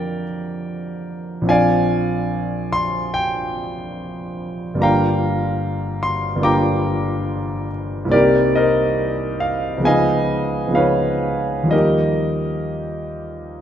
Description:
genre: classical, impressionist solo piano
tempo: 59-75 BPM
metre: 4/4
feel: rubato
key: unclear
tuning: A4 = 440 Hz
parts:
  - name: warm concert grand piano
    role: solo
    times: 0.0-13.6 s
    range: G1 to D6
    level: -17 LUFS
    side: equal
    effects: none
room: moderate concert hall reverb, RT60 2.2 s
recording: dark, warm production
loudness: -17 LUFS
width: side -9 dB against mid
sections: 0.0-13.6 A section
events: none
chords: 0.0 Gm7/F; 1.5 Bb9; 4.8 Gm7; 8.1 Cm7; 9.9 Db9; 11.7 Ebadd9

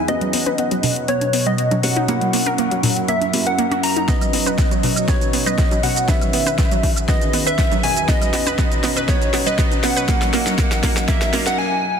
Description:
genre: progressive house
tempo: 120 BPM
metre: 4/4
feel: straight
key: B major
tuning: A4 = 441 Hz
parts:
  - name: plucky unison lead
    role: melody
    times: 0.0-12.0 s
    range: C#5 to A#5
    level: -22 LUFS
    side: equal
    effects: sidechain pumping, ping-pong delay
  - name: evolving wavetable pad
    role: sustained chords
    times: 0.0-11.6 s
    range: E2 to F#5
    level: -27 LUFS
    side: equal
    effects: chorus, built-in reverb, sidechain pumping
  - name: felt-muted upright piano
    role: stabs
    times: 0.0-11.6 s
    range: D#3 to C#5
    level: -26 LUFS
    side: equal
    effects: sidechain pumping, low-pass filter, tape echo
  - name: glassy wavetable pluck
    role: arpeggios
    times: 0.1-11.4 s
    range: A#2 to B4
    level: -23 LUFS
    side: right 1 dB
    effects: chorus, sidechain pumping, tape echo
  - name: deep house drum kit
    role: drums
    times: 0.1-11.6 s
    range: hi-hat, shaker, snare drum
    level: -24 LUFS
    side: left 1 dB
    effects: overdrive, sidechain pumping on hats, high-pass filter on hats, small room ambience, sidechain pumping on perc, high-pass filter on perc, high-pass filter on snare
  - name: congas and woodblock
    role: percussion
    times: 0.1-11.3 s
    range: none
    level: -29 LUFS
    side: right 4 dB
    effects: sidechain pumping on perc, small room ambience
  - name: electronic kick drum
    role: drums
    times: 4.1-11.2 s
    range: none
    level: -19 LUFS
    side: equal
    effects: overdrive, small room ambience
room: moderate lush hall reverb, RT60 2.1 s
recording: dense, heavily limited modern master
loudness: -16 LUFS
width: side -7 dB against mid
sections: 0.0-12.0 A section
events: build-up 0.0-12.0; filter sweep on synth arpeggio sound 0.0-12.0; filter sweep on digital synth lead 0.0-12.0; drum fill 4.1-11.6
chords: 0.1 Badd9; 2.1 F#7; 4.1 Badd9; 6.1 Emaj7; 8.1 Badd9; 10.1 F#7

